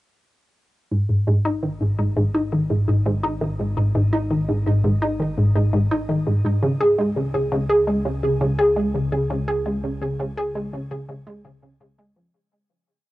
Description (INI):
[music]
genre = ambient, sequencer-driven space music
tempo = 84 BPM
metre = 4/4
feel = straight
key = unclear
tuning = A4 = 440 Hz
[part]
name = resonant blip pluck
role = riff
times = 0.9-12.3 s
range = G#2 to G#4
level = -19 LUFS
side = equal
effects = chorus, vintage 12-bit sampler grit, cassette tape, tape echo, shimmer reverb
[part]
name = fat analog bass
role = bass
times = 0.9-12.3 s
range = G#1 to C#2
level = -32 LUFS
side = equal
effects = none
[sound]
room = wet booth ambience, RT60 0.2 s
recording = home recording on cassette, nothing above 11.0 kHz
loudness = -19 LUFS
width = side -17 dB against mid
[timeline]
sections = 0.9-12.3 A section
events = fade-out 8.5-12.3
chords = 0.9 G#5; 6.6 C#5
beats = | 0.91 1.63 2.34 3.06 | 3.77 4.48 5.20 5.91 | 6.63 7.34 8.06 8.77 | 9.48 10.20 10.91 11.63